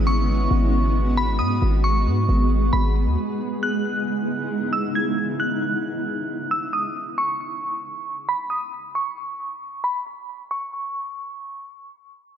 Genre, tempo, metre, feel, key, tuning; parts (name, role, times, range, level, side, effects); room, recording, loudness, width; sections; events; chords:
hip hop; 135 BPM; 4/4; half-time; C# minor; A4 = 440 Hz
granular cloud pad; sustained chords; 0.0-5.2 s; C#3 to G#4; -25 LUFS; equal; built-in reverb, low-pass filter
warm 808-style bass; bass; 0.0-3.2 s; G#1 to G#2; -20 LUFS; equal
glassy synth bell; melody; 0.1-11.8 s; B5 to G#6; -26 LUFS; right 1 dB; chorus, low-pass filter, ping-pong delay
light reverb; -21 LUFS; side -9 dB against mid
0.0-10.5 A section; 10.5-12.4 B section
filter sweep 0.0-10.5
0.0 G#m7; 3.4 C#m9; 7.0 N.C.